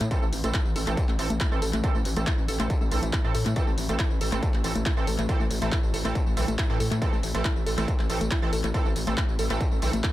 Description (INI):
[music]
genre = driving peak-time techno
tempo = 139 BPM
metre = 4/4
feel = straight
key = A minor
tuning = A4 = 445 Hz
[part]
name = warbly dusty pluck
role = riff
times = 0.0-10.1 s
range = A3 to A4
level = -32 LUFS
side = left 1 dB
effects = chorus, sidechain pumping, tape echo
[part]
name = gritty driven synth bass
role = bass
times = 0.0-10.0 s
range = A1 to A2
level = -30 LUFS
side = equal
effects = distortion, sidechain pumping
[part]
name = metallic inharmonic drone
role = drone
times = 0.3-10.1 s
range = A2 to E3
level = -37 LUFS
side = left 1 dB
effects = none
[part]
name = punchy analog drum machine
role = drums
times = 0.0-10.1 s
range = handclaps, hi-hat, tambourine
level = -33 LUFS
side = equal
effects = overdrive, sidechain pumping on hats, sidechain pumping on cymbals, sidechain pumping on perc, tape echo
[part]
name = sync-sweep polysynth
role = stabs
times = 0.1-9.9 s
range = E3 to A4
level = -32 LUFS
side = right 4 dB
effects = chorus, sidechain pumping, tape echo
[part]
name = electronic kick drum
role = drums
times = 0.1-10.1 s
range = none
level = -26 LUFS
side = equal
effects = distortion, overdrive
[sound]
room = light reverb, digital ambience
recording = echo-heavy mix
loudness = -23 LUFS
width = side -15 dB against mid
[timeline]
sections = 0.0-10.1 A section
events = none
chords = 0.0 Am